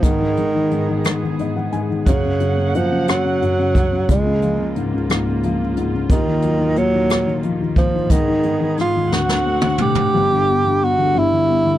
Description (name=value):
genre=six-eight pop ballad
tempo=59 BPM (dotted quarters)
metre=6/8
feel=straight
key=unclear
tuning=A4 = 440 Hz
part: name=mellow tenor saxophone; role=melody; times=0.0-11.8 s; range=Db3 to G4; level=-18 LUFS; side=right 2 dB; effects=none
part: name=felt-muted upright piano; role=accompaniment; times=0.0-11.8 s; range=G1 to Ab5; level=-20 LUFS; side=left 4 dB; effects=none
part: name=warm studio string section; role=sustained chords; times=0.0-10.1 s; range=Db2 to Gb5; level=-26 LUFS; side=right 2 dB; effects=none
part: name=jazz brush drum kit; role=drums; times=0.0-10.1 s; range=hi-hat, kick drum, rim click, snare drum, toms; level=-19 LUFS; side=equal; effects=none
room=light reverb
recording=none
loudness=-15 LUFS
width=side -13 dB against mid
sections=0.0-10.1 A section; 10.1-11.8 B section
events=felt piano fill 1.0-2.1; drum fill 9.1-10.1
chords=0.0 Abm; 2.1 Gb; 4.1 Db6; 6.1 Ebmadd9; 8.1 Abm; 9.1 D7; 10.1 G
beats=| 0.03 1.04 | 2.06 3.08 | 4.09 5.10 | 6.10 7.10 | 8.10 9.11 | 10.13 11.14